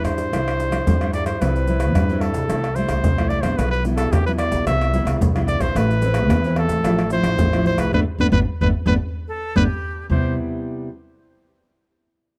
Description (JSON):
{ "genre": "samba and choro", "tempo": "110 BPM", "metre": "4/4", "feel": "straight", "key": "C major", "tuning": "A4 = 440 Hz", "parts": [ { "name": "warm trumpet", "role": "melody", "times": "0.0-10.4 s", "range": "G4 to E5", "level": "-27 LUFS", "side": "equal", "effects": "none" }, { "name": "nylon-string guitar", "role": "accompaniment", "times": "0.0-10.9 s", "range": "G2 to B4", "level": "-26 LUFS", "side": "equal", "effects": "none" }, { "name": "upright bass", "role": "bass", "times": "0.0-10.4 s", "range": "G1 to C3", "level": "-25 LUFS", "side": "equal", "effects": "none" }, { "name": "maracas, pandeiro, tamborim and surdo", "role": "percussion", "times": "0.0-10.2 s", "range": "none", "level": "-25 LUFS", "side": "equal", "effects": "none" }, { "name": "bright silver concert flute", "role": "second line", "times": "9.3-10.4 s", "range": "G4 to A4", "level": "-33 LUFS", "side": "equal", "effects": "none" } ], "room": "small room ambience", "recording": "dry, close 1970s-style studio recording", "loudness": "-20 LUFS", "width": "mono", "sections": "0.0-1.4 A section; 1.4-10.1 B section; 10.1-12.3 C section", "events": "band accent 7.9-10.1", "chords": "0.0 Cadd9; 1.4 C; 2.5 Am7/C; 3.6 Em/B; 4.7 Cmaj7; 5.8 Amadd9; 6.8 Fmaj7/A; 7.9 Gadd9; 10.1 Cmaj7" }